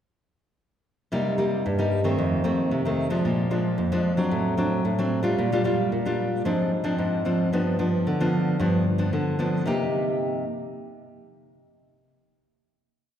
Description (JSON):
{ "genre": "samba", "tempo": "112 BPM", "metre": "4/4", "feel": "straight", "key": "C minor", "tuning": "A4 = 442 Hz", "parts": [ { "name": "nylon-string guitar", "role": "solo", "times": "1.1-10.4 s", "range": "F2 to G4", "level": "-22 LUFS", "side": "equal", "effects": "none" } ], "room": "wet concert hall reverb, RT60 2.4 s", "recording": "recorded in a church or concert hall", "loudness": "-22 LUFS", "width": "side -9 dB against mid", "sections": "1.1-9.7 A section; 9.7-11.8 final chord", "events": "none", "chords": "1.1 Cm7; 2.2 F7; 3.3 Bb7; 4.3 D7/A; 5.4 Gm7/Bb; 6.5 Dm7b5/Ab; 7.5 G7; 9.7 Cm7", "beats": "| 1.12 1.65 2.19 2.72 | 3.25 3.79 4.32 4.85 | 5.39 5.92 6.46 6.99 | 7.52 8.06 8.59 9.13 | 9.66 10.20" }